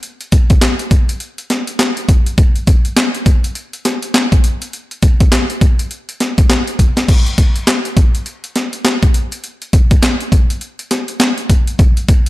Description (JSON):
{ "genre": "R&B", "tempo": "102 BPM", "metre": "4/4", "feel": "swing 60% on 16ths", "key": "none", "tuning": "none", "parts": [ { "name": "breakbeat sampler-style drum kit", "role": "drums", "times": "0.0-12.3 s", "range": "crash cymbal, handclaps, hi-hat, kick drum, snare drum", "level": "-11 LUFS", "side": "equal", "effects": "none" } ], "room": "digital ambience", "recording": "none", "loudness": "-11 LUFS", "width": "side -18 dB against mid", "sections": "0.0-7.1 A section; 7.1-12.3 B section", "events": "none", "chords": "none", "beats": "| 0.03 0.61 1.20 1.79 | 2.38 2.97 3.56 4.14 | 4.73 5.32 5.91 6.50 | 7.09 7.67 8.26 8.85 | 9.44 10.03 10.62 11.20 | 11.79" }